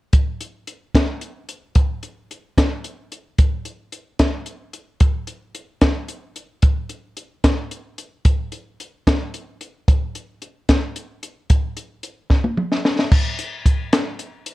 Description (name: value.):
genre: rock.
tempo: 74 BPM (dotted quarters).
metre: 6/8.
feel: straight.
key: none.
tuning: none.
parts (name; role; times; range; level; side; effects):
compact cocktail drum kit; drums; 0.1-14.5 s; crash cymbal, hi-hat, kick drum, snare drum, toms; -16 LUFS; equal; none.
room: little or no reverb.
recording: worn, warbling old tape, cassette tape, warbly pitch drift.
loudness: -18 LUFS.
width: side -18 dB against mid.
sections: 0.1-13.1 A section; 13.1-14.5 B section.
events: drum fill 12.3-13.1.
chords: none.